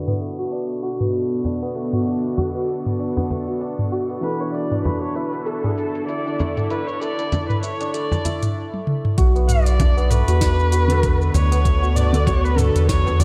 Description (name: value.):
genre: organic downtempo.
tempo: 97 BPM.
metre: 4/4.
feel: swing 57% on 16ths.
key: B minor.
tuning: A4 = 439 Hz.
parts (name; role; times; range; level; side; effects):
felt-muted upright piano; accompaniment; 0.0-13.2 s; D3 to A4; -31 LUFS; equal; sidechain pumping.
bowed-like drone; sustained chords; 0.2-13.2 s; B2 to D5; -31 LUFS; equal; built-in reverb, sidechain pumping.
santur; arpeggios; 0.0-13.2 s; A3 to A4; -28 LUFS; equal; low-pass filter, delay.
afro-pop drum kit; drums; 0.1-13.2 s; hi-hat, shaker, snare drum, toms; -28 LUFS; equal; studio reverb.
frame drum; percussion; 1.4-13.2 s; none; -27 LUFS; equal; none.
warm kamancheh; melody; 4.2-13.2 s; G#4 to D5; -28 LUFS; equal; vintage 12-bit sampler grit, delay.
round analog bass; bass; 9.2-13.2 s; B1 to E2; -20 LUFS; equal; none.
electronic kick drum; drums; 9.2-13.0 s; none; -22 LUFS; equal; studio reverb.
room: light reverb, small room ambience.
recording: dark, warm production, low-pass filter.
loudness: -20 LUFS.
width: mono.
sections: 0.0-9.2 A section; 9.2-13.2 B section.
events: filter sweep on santur 0.0-9.2; filter sweep 0.0-9.2; drum fill 8.7-9.2.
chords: 0.0 Bm7; 4.2 Dsus2; 9.2 Bm7.